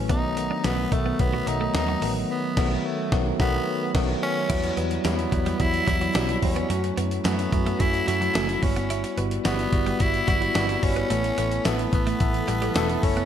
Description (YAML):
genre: 1980s-style pop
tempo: 109 BPM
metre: 4/4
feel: straight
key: unclear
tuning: A4 = 441 Hz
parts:
  - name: tine electric piano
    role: accompaniment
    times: 0.0-13.3 s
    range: D#3 to A4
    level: -27 LUFS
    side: equal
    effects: medium stereo tremolo
  - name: vintage muted picked electric bass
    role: bass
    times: 0.0-13.3 s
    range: E1 to F#2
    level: -28 LUFS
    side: equal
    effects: none
  - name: raspy tenor saxophone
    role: melody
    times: 0.1-13.3 s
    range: A3 to E4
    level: -28 LUFS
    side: equal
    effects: ping-pong delay
  - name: twelve-string electric guitar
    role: riff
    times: 0.1-13.3 s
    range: F#3 to E4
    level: -33 LUFS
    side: right 4 dB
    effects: wide subtle chorus
  - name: dusty soul sampler-style drum kit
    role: drums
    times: 0.1-13.3 s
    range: crash cymbal, hi-hat, kick drum, snare drum, tambourine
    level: -26 LUFS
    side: equal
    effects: gated reverb
  - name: group handclap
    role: percussion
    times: 0.6-12.9 s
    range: none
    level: barely audible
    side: none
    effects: none
  - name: mellow synth brass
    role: stabs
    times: 12.3-13.0 s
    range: E3 to A4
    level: -32 LUFS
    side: left 4 dB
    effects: chorus, phaser, ping-pong delay
room: moderate lush hall reverb, RT60 1.8 s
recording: bright 1980s-style digital production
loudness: -21 LUFS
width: side -9 dB against mid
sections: 0.0-4.5 A section; 4.5-13.3 B section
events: band accent 2.3-4.5, 11.1-13.3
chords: 0.1 B7; 4.5 Emadd9; 6.7 F#m; 8.6 Emadd9/G; 11.1 Asus2